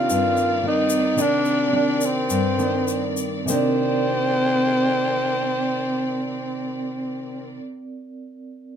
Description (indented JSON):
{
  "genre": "bossa nova",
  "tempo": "98-113 BPM",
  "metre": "4/4",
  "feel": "straight",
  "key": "C minor",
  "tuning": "A4 = 437 Hz",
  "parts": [
    { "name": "growling tenor saxophone", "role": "melody", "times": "0.0-7.6 s", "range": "C4 to F4", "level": "-22 LUFS", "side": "equal", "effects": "none" },
    { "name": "nylon-string guitar", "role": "accompaniment", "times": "0.0-7.6 s", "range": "G2 to D4", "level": "-25 LUFS", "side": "left 2 dB", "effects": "none" },
    { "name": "vibraphone with soft mallets", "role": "accompaniment", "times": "0.0-8.8 s", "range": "C4 to D5", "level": "-28 LUFS", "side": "right 5 dB", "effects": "none" },
    { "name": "warm studio string section", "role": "sustained chords", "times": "0.0-7.6 s", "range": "C4 to D5", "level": "-29 LUFS", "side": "equal", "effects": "none" },
    { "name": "egg shaker", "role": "percussion", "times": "0.1-3.6 s", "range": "none", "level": "-30 LUFS", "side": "left 6 dB", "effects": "none" }
  ],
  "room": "little or no reverb",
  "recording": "close, detailed microphones",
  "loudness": "-19 LUFS",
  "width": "side -8 dB against mid",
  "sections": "0.0-3.5 A section; 3.5-8.4 B section",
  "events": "slowing down 0.0-3.5",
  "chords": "0.0 Cm9"
}